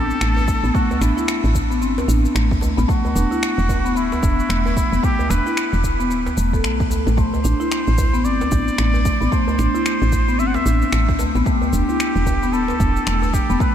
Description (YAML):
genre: organic downtempo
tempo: 112 BPM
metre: 4/4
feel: swing 60% on 16ths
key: A dorian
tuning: A4 = 442 Hz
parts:
  - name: trumpet with straight mute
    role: melody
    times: 0.0-13.7 s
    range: E4 to F#5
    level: -25 LUFS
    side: equal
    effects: ping-pong delay
  - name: marimba with medium mallets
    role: arpeggios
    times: 0.0-13.7 s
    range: A3 to A4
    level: -21 LUFS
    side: left 2 dB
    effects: ping-pong delay
  - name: woody FM bass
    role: bass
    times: 0.0-13.6 s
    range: D1 to B1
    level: -20 LUFS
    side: equal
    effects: none
  - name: electronic shaker and finger snaps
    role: drums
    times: 0.1-13.7 s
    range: none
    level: -29 LUFS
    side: left 2 dB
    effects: overdrive
  - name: djembe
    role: percussion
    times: 0.4-13.3 s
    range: none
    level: -29 LUFS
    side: right 2 dB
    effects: none
  - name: electronic kick drum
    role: drums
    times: 0.5-13.7 s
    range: none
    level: -21 LUFS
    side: equal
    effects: overdrive
room: moderate huge ambient reverb, RT60 7.5 s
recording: dreamy mix soaked in reverb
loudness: -16 LUFS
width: side -10 dB against mid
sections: 0.0-13.7 A section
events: none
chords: 0.0 N.C.; 2.9 E5; 7.2 Am; 11.5 Em7